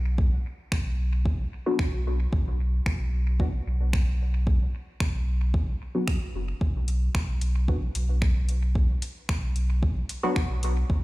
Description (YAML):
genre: dub techno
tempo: 112 BPM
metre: 4/4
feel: straight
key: B minor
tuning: A4 = 440 Hz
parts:
  - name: soft dub sub bass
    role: bass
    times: 0.0-11.0 s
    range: F#1 to B1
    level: -25 LUFS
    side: equal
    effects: sidechain pumping
  - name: electronic kick drum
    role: drums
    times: 0.2-11.0 s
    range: none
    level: -25 LUFS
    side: equal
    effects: none
  - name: soft vintage rhythm box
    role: drums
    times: 0.7-10.7 s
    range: finger snaps, hi-hat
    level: -37 LUFS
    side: equal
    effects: dub echo
  - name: filtered dub chord stab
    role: stabs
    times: 1.7-10.4 s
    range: F#3 to F#4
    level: -31 LUFS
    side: left 1 dB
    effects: chorus, phaser, cassette tape, dub echo
room: little or no reverb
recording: played on a big sound system in a bare room, stone room reverb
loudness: -24 LUFS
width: side -19 dB against mid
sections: 0.0-11.0 A section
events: none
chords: 0.0 B5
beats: | 0.18 0.72 1.25 1.79 | 2.33 2.86 3.40 3.93 | 4.47 5.00 5.54 6.08 | 6.61 7.15 7.68 8.22 | 8.76 9.29 9.83 10.36 | 10.90